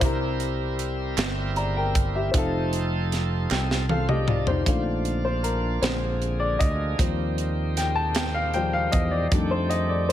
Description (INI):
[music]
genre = slow gospel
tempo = 52 BPM (dotted quarters)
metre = 6/8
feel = straight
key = Bb major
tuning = A4 = 438 Hz
[part]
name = warm grand piano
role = accompaniment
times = 0.0-10.1 s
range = C3 to Bb5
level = -26 LUFS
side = left 3 dB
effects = none
[part]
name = bright tonewheel organ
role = sustained chords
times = 0.0-10.1 s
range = D3 to C5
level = -33 LUFS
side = right 5 dB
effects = slow rotary speaker, overdrive
[part]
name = fingered electric bass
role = bass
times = 0.0-10.1 s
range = F1 to F2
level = -27 LUFS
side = right 1 dB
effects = none
[part]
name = tight funk drum kit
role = drums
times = 0.0-10.1 s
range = hi-hat, kick drum, snare drum, toms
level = -26 LUFS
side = right 1 dB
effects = none
[part]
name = group handclap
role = percussion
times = 1.2-3.9 s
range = none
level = -34 LUFS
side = right 14 dB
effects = none
[sound]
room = light reverb, small room ambience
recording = none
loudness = -22 LUFS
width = side -11 dB against mid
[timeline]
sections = 0.0-4.7 A section; 4.7-10.1 B section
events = drum fill 3.5-4.7; grand piano solo 4.7-10.1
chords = 0.0 C7; 2.3 F7; 4.7 Bbmaj7; 5.8 Bb7; 7.0 Eb6; 9.3 F13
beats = | 0.01 1.18 | 2.34 3.50 | 4.67 5.83 | 6.99 8.15 | 9.32